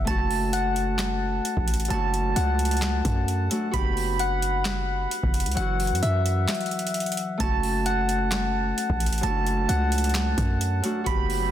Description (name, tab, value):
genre	hip hop, trap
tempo	131 BPM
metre	4/4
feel	half-time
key	unclear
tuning	A4 = 440 Hz
part	Celtic harp	accompaniment	0.0-11.5 s	F#2 to G4	-30 LUFS	equal	low-pass filter
part	soft electric-piano-like synth keys	arpeggios	0.0-11.5 s	E5 to B5	-28 LUFS	left 1 dB	chorus, low-pass filter, ping-pong delay
part	hard-hitting 808-style bass	bass	0.0-11.5 s	F#1 to F#2	-26 LUFS	equal	none
part	booming analog drum machine	drums	0.1-11.4 s	handclaps, hi-hat, kick drum, snare drum	-28 LUFS	equal	none
part	riser	sound effects	11.4-11.5 s	none	-40 LUFS	right 1 dB	none
room	light reverb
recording	dense, heavily limited modern master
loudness	-22 LUFS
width	side -11 dB against mid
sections	0.0-11.5 A section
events	break 6.5-7.4; riser 11.4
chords	0.1 F#m; 1.9 D/F#; 3.7 G/F#; 5.6 Esus2/F#; 7.4 F#m; 9.2 D/F#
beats	| 0.07 0.53 0.99 1.45 | 1.90 2.36 2.82 3.28 | 3.74 4.19 4.65 5.11 | 5.57 6.03 6.48 6.94 | 7.40 7.86 8.32 8.78 | 9.23 9.69 10.15 10.61 | 11.06